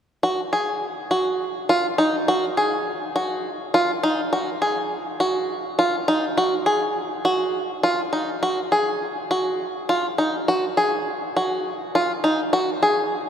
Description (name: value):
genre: progressive instrumental, progressive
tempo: 205 BPM (eighths)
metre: 7/8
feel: straight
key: unclear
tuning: A4 = 441 Hz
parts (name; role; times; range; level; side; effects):
- bluegrass banjo; solo; 0.2-13.2 s; D#4 to G#4; -20 LUFS; equal; none
room: wet cathedral reverb, RT60 5.5 s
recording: recorded in a church or concert hall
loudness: -20 LUFS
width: side -8 dB against mid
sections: 0.2-13.3 A section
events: none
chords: none